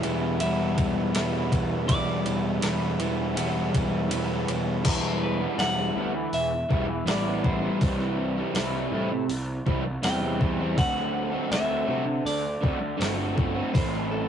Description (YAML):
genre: rock, shoegaze and dream pop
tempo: 81 BPM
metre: 4/4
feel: straight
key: E minor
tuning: A4 = 438 Hz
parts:
  - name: clean electric guitar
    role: melody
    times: 0.0-14.3 s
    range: A4 to G5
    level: -31 LUFS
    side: left 1 dB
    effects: none
  - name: crunchy overdriven guitar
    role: riff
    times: 0.0-14.3 s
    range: A2 to F#4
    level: -27 LUFS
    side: equal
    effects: none
  - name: fuzz picked electric bass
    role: bass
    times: 0.0-14.3 s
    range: E1 to C3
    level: -30 LUFS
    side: equal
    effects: overdrive
  - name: crisp 8-bit digital drum machine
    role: drums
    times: 0.0-14.0 s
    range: crash cymbal, hi-hat, kick drum, ride cymbal, snare drum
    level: -28 LUFS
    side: equal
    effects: none
room: moderate studio reverb, RT60 0.5 s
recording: rough rehearsal-room recording, tube saturation, nothing above 11.0 kHz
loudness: -24 LUFS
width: side -8 dB against mid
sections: 0.0-4.8 A section; 4.8-14.3 B section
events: kick and snare drop out 4.1-4.8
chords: 0.0 Em; 7.8 C; 10.8 D7; 13.7 Am